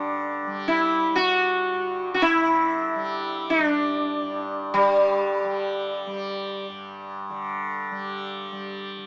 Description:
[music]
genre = indian classical, Hindustani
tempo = free time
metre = none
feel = none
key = unclear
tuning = A4 = 440 Hz
[part]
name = sitar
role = melody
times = 0.0-6.7 s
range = G3 to F#4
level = -24 LUFS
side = equal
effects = none
[part]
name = tanpura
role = drone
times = 0.0-9.1 s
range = G2 to G3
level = -33 LUFS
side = equal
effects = none
[sound]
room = light reverb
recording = small speaker sound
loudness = -24 LUFS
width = mono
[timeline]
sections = 0.0-9.0 A section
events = none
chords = none

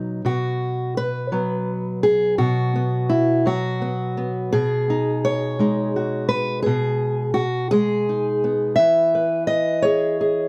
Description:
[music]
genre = folk, solo fingerstyle acoustic guitar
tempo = 56 BPM (dotted quarters)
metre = 6/8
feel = straight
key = B major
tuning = A4 = 441 Hz
[part]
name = fingerpicked steel-string acoustic guitar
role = solo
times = 0.0-10.5 s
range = B2 to E5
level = -21 LUFS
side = equal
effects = none
[sound]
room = light reverb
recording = close, detailed microphones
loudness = -21 LUFS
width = mono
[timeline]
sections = 0.2-10.5 A section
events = none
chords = 0.2 B5; 4.5 G#m7/B; 8.8 E

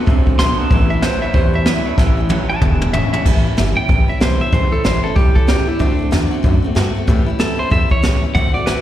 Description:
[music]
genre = rockabilly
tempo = 188 BPM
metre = 4/4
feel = swing 62% on 8ths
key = A mixolydian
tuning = A4 = 440 Hz
[part]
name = picked steel-string acoustic guitar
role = accompaniment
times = 0.0-8.8 s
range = E2 to F#4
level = -22 LUFS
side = left 4 dB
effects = slapback echo
[part]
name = electric guitar through a small old amp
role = riff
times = 0.0-3.2 s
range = E2 to C4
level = -23 LUFS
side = right 4 dB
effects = spring reverb, slapback echo
[part]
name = upright bass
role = bass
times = 0.1-8.8 s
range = E1 to A2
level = -18 LUFS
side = equal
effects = none
[part]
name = jazz brush drum kit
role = drums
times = 0.1-8.8 s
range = crash cymbal, hi-hat, kick drum, snare drum, toms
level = -17 LUFS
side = equal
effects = none
[part]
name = clean electric guitar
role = melody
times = 0.4-8.8 s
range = D4 to C6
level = -21 LUFS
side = right 2 dB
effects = slapback echo, analog delay
[sound]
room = little or no reverb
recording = live gig heard through the venue's PA, recital hall reverb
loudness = -13 LUFS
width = side -12 dB against mid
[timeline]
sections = 0.0-3.3 A section; 3.3-8.8 B section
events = drum fill 2.0-3.3; clean electric guitar solo 3.3-8.8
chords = 0.0 D7; 0.7 A7; 2.6 E7; 3.3 A7; 5.8 D7; 7.1 A7

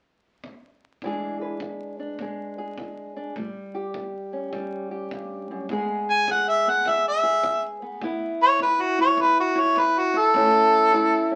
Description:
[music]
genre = acoustic country blues, solo or duo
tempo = 103 BPM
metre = 4/4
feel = swing 64% on 8ths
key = E mixolydian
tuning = A4 = 440 Hz
[part]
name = kick drum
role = drums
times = 0.4-11.1 s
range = none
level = -47 LUFS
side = equal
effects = none
[part]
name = fingerpicked old ladder-braced acoustic guitar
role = accompaniment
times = 1.0-11.4 s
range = E2 to B4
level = -30 LUFS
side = equal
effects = none
[part]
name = clear harmonica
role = melody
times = 6.1-11.3 s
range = F#4 to G#5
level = -21 LUFS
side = equal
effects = none
[sound]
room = wet small room reverb, RT60 0.5 s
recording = very old 78 rpm record, vinyl crackle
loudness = -22 LUFS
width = mono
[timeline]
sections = 0.0-1.0 A section; 1.0-5.7 B section; 5.7-11.4 C section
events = none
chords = 0.0 N.C.; 1.0 E7; 3.4 A7; 5.7 E; 10.3 A

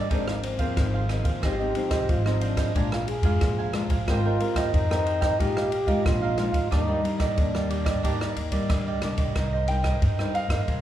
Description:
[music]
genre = samba and choro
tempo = 91 BPM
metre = 4/4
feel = straight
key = Eb major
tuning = A4 = 440 Hz
[part]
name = mellow trombone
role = second line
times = 0.0-8.7 s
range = C4 to Ab4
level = -30 LUFS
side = left 1 dB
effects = none
[part]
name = cavaquinho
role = accompaniment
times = 0.0-10.8 s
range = D4 to Ab5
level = -31 LUFS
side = right 6 dB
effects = none
[part]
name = nylon-string guitar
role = accompaniment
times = 0.0-10.8 s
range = G2 to Bb4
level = -31 LUFS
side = left 3 dB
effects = none
[part]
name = upright bass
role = bass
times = 0.1-10.8 s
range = Ab1 to G2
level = -29 LUFS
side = equal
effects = none
[part]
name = open jazz drum kit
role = drums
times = 0.1-10.8 s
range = kick drum, ride cymbal, rim click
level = -27 LUFS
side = equal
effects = none
[part]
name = clear grand piano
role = melody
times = 9.7-10.8 s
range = F5 to G5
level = -30 LUFS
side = equal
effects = none
[sound]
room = moderate recital hall reverb, RT60 1.4 s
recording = recorded in a church or concert hall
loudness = -22 LUFS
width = side -12 dB against mid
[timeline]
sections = 0.0-9.4 A section; 9.4-10.8 B section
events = trombone solo 0.0-9.4; grand piano solo 9.4-10.8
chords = 0.1 Ab69; 1.4 Fm7/Ab; 2.8 Bb7; 4.1 Abmaj9; 5.4 Bb7sus4; 6.7 Ebmaj7; 9.4 Cm7

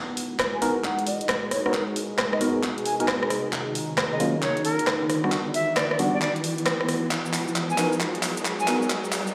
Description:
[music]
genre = UK garage, two-step garage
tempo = 134 BPM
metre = 4/4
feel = swing 65% on 16ths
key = G# minor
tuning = A4 = 440 Hz
[part]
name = soft string machine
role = sustained chords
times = 0.0-9.3 s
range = D#3 to D#5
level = -37 LUFS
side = equal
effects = ensemble chorus, sidechain pumping
[part]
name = riser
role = sound effects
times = 1.8-9.3 s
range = none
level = -36 LUFS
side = equal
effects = none
[part]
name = deep dark ambient pad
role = texture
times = 0.0-9.3 s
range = B3 to A#5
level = -34 LUFS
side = equal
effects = chorus, built-in reverb, sidechain pumping
[part]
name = house drum kit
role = drums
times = 0.2-9.3 s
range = handclaps, hi-hat, rim click, shaker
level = -29 LUFS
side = equal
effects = none
[part]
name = electronic kick drum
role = drums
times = 0.4-9.0 s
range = none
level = -41 LUFS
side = equal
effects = none
[part]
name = breathy bright jazz flute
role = melody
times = 0.5-8.8 s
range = A#4 to G#5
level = -32 LUFS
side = equal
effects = low-pass filter, dub echo
[part]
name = percussive organ stab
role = stabs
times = 0.6-8.8 s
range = F#3 to A#4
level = -30 LUFS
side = equal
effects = subtle chorus, dub echo
[sound]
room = moderate plate reverb, RT60 1.4 s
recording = played on a big sound system in a bare room, stone room reverb, high-pass filter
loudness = -25 LUFS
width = mono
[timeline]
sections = 0.0-9.3 A section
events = build-up 0.0-9.3; drum fill 0.0-9.3; filter sweep on flute 0.0-9.3; filter sweep on string machine 0.0-9.3; riser 1.8-9.3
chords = 0.0 G#m9; 3.3 D#m9; 5.3 Em9; 7.1 G#m9

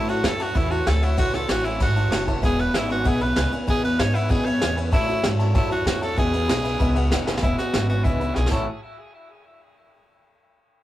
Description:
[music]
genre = rockabilly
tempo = 192 BPM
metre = 4/4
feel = straight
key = A major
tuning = A4 = 440 Hz
[part]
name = raspy tenor saxophone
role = melody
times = 0.0-8.7 s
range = E4 to C#5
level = -27 LUFS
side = equal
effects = tape echo
[part]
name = honky-tonk upright piano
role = accompaniment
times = 0.0-8.7 s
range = B4 to B5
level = -32 LUFS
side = left 1 dB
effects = none
[part]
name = picked swing-style acoustic guitar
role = accompaniment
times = 0.0-8.7 s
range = A2 to G#4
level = -32 LUFS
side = left 2 dB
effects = none
[part]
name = electric guitar through a small old amp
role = riff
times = 0.0-8.6 s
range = E2 to C#5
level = -28 LUFS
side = equal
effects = none
[part]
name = upright bass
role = bass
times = 0.0-8.7 s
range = E1 to A2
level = -25 LUFS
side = equal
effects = none
[part]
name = vintage brush drum kit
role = drums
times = 0.1-8.6 s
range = crash cymbal, hi-hat, kick drum, ride cymbal, snare drum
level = -24 LUFS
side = equal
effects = none
[sound]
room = moderate small room reverb, RT60 0.5 s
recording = rough rehearsal-room recording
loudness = -19 LUFS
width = side -14 dB against mid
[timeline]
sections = 0.0-7.4 A section; 7.4-8.7 B section; 8.7-9.9 C section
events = drum fill 7.3, 8.4-8.7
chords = 0.0 A6; 2.4 E6; 4.9 A6; 6.2 E6; 8.5 A6; 8.7 N.C.

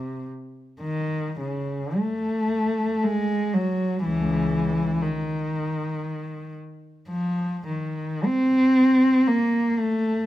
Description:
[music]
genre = classical, free, expressive piece for unaccompanied cello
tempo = 48-62 BPM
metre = 3/4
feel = rubato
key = unclear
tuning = A4 = 441 Hz
[part]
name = dark cello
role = solo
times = 0.0-10.3 s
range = C#2 to C4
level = -22 LUFS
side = equal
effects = none
[sound]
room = wet large studio reverb, RT60 1.2 s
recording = minimal, uncompressed stereo recording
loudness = -21 LUFS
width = side -14 dB against mid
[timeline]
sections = 0.0-10.3 A section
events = none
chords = none

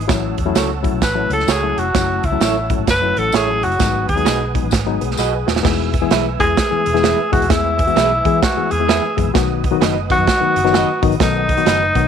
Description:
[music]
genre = uptempo 1960s-style soul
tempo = 130 BPM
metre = 4/4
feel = swing 63% on 8ths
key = E major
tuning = A4 = 440 Hz
[part]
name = mellow tonewheel organ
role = sustained chords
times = 0.0-12.1 s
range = B4 to E6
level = -29 LUFS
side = right 12 dB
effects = chorus vibrato, wide subtle chorus
[part]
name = vintage muted fingered electric bass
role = bass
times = 0.0-12.1 s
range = D#1 to E3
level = -23 LUFS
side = equal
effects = none
[part]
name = natural country drum kit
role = drums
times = 0.0-12.0 s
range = crash cymbal, hi-hat, kick drum, snare drum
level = -19 LUFS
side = right 4 dB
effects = none
[part]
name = barky reed electric piano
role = accompaniment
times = 0.1-12.1 s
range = D#3 to B4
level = -21 LUFS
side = left 13 dB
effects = none
[part]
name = tambourine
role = percussion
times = 0.1-5.3 s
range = none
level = -30 LUFS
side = left 14 dB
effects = none
[part]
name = electric guitar through a small old amp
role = stabs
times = 0.6-11.8 s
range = E4 to E5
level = -23 LUFS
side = right 12 dB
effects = tremolo
[part]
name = warm tenor saxophone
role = melody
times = 1.0-12.1 s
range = D#4 to B4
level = -18 LUFS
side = equal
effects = tape echo
[sound]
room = light reverb, small room ambience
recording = 1960s-style stereo with parts hard left and right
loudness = -14 LUFS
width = side -8 dB against mid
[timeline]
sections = 0.0-5.7 A section; 5.7-12.1 B section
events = tenor saxophone solo 0.0-5.7; drum fill 5.2-5.7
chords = 0.1 A6; 1.9 F#m7; 3.8 G#m7; 5.7 E; 9.4 B

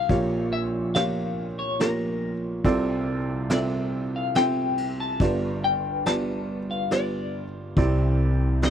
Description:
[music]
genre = acoustic folk-pop ballad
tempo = 70 BPM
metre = 3/4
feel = straight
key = F major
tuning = A4 = 440 Hz
[part]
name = semi-hollow electric guitar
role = melody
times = 0.0-8.7 s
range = Bb4 to A5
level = -28 LUFS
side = left 6 dB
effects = tremolo
[part]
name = felt-muted upright piano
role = accompaniment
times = 0.0-8.7 s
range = G1 to E5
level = -25 LUFS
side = right 2 dB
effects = none
[part]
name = vintage brush drum kit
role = drums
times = 0.1-8.7 s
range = kick drum, ride cymbal, snare drum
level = -28 LUFS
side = left 1 dB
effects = none
[part]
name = upright bass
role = bass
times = 7.8-8.7 s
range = C2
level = -23 LUFS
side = left 1 dB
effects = none
[sound]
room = little or no reverb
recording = dry, close 1970s-style studio recording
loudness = -23 LUFS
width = side -9 dB against mid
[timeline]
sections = 0.0-8.7 A section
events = none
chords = 0.1 Bbm6; 2.7 F6/C; 5.2 G7; 7.8 Cadd9

